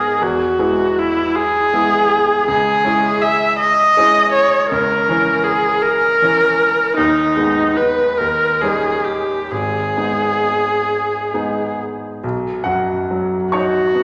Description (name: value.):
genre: classical, romantic duo for viola and grand piano.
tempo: 43-55 BPM (dotted quarters).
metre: 6/8.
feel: rubato.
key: G# minor.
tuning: A4 = 441 Hz.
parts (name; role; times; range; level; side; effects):
rich viola; melody; 0.0-14.0 s; D#4 to E5; -17 LUFS; equal; none.
bright grand piano; accompaniment; 0.0-14.0 s; G#1 to C#6; -24 LUFS; equal; none.
room: wet scoring stage reverb, RT60 2.0 s.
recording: none.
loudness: -16 LUFS.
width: mono.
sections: 0.0-12.2 A section; 12.2-14.0 B section.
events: none.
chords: 0.2 E; 2.5 C#m; 4.7 A#dim/C#; 7.0 G#m/D#; 8.2 D#7; 9.5 G#m; 12.2 B.